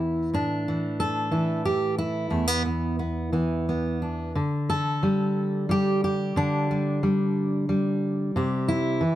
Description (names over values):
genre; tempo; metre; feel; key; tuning
folk, solo fingerstyle acoustic guitar; 90 BPM; 3/4; rubato; unclear; A4 = 437 Hz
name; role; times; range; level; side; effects
fingerpicked steel-string acoustic guitar; solo; 0.0-9.2 s; E2 to A4; -23 LUFS; equal; none
room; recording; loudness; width
little or no reverb; close, detailed microphones; -23 LUFS; side -13 dB against mid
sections
0.0-4.4 A section; 4.4-9.2 B section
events
none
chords
0.3 A5; 2.3 E5; 4.4 Dsus4; 8.3 C